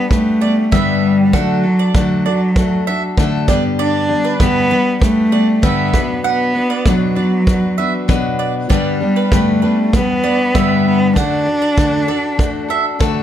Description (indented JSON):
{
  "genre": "acoustic pop",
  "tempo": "98 BPM",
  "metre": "4/4",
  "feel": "straight",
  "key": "G major",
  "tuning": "A4 = 440 Hz",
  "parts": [
    { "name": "warm cello", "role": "melody", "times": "0.0-13.0 s", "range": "F#3 to D4", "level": "-16 LUFS", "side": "right 1 dB", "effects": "none" },
    { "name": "fingerpicked steel-string acoustic guitar", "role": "accompaniment", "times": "0.0-13.2 s", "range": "G2 to B4", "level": "-17 LUFS", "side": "left 3 dB", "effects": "none" },
    { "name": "kick drum", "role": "drums", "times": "0.1-13.1 s", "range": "none", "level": "-17 LUFS", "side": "right 1 dB", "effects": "none" },
    { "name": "mandolin", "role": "arpeggios", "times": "0.4-12.8 s", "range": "B4 to F#5", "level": "-22 LUFS", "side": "right 8 dB", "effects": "none" }
  ],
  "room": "moderate studio reverb, RT60 0.6 s",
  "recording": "none",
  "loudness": "-12 LUFS",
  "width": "side -10 dB against mid",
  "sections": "0.0-13.2 A section",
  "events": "none",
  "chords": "0.0 G; 1.3 D; 3.5 G; 5.9 Bm; 8.7 G; 11.2 D"
}